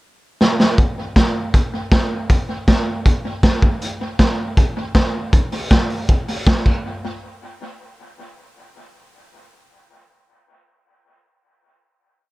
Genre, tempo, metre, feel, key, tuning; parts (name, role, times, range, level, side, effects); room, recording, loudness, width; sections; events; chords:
indie pop; 158 BPM; 4/4; straight
raw garage drum kit; drums; 0.4-6.7 s; crash cymbal, hi-hat, kick drum, snare drum; -15 LUFS; equal; dub echo
light reverb; echo-heavy mix, cassette tape; -15 LUFS; side -20 dB against mid
0.0-0.8 pickup bar; 0.8-6.8 verse; 6.8-8.4 final hit
drum fill 0.4-0.8